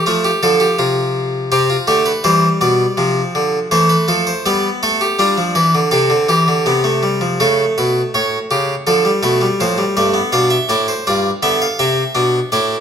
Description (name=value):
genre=classical, baroque-style 3-part fugue for harpsichord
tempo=82 BPM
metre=4/4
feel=straight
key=F major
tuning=A4 = 440 Hz
part: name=harpsichord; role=solo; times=0.0-12.8 s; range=G2 to F5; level=-13 LUFS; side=equal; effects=none
room=wet recital hall reverb, RT60 1.6 s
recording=recorded in a church or concert hall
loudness=-13 LUFS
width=side -8 dB against mid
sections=0.0-7.4 A section; 7.4-12.8 B section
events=none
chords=0.1 F; 1.5 C; 3.0 F/C; 4.4 G7; 5.9 C5; 7.4 A7; 8.9 Dm; 10.3 G7 (rootless)